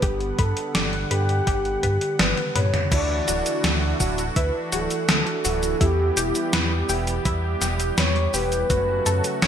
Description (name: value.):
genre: synthwave.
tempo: 83 BPM.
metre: 4/4.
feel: straight.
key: unclear.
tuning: A4 = 442 Hz.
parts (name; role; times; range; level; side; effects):
expressive synth lead; melody; 0.0-9.5 s; E4 to D5; -26 LUFS; equal; chorus, cassette tape, digital delay.
warm analog pad; sustained chords; 0.0-9.5 s; C#3 to F#5; -30 LUFS; right 2 dB; lush chorus, sidechain pumping.
analog pluck; arpeggios; 0.0-9.5 s; E4 to D5; -31 LUFS; left 5 dB; chorus, cassette tape, ping-pong delay.
chorused synth bass; bass; 0.0-9.5 s; D1 to G2; -25 LUFS; equal; tube saturation.
electronic kick drum; drums; 0.0-8.8 s; none; -24 LUFS; equal; overdrive, small room ambience.
gated 80s digital drum machine; drums; 0.0-9.5 s; cabasa, crash cymbal, hi-hat, snare drum, toms; -24 LUFS; equal; gated reverb, gated reverb snare, overdrive, small room ambience.
mellow synth brass; stabs; 2.9-9.5 s; D3 to G4; -31 LUFS; right 3 dB; chorus, ping-pong delay.
room: moderate plate reverb, RT60 2.5 s.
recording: bright 1980s-style digital production.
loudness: -20 LUFS.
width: side -8 dB against mid.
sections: 0.0-2.9 A section; 2.9-9.5 B section.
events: drum fill 2.4-2.9.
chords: 0.0 G; 2.9 Dadd9; 5.8 Em; 8.7 F#m.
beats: | 0.03 0.75 1.47 2.19 | 2.92 3.64 4.36 5.08 | 5.81 6.53 7.25 7.98 | 8.70 9.42.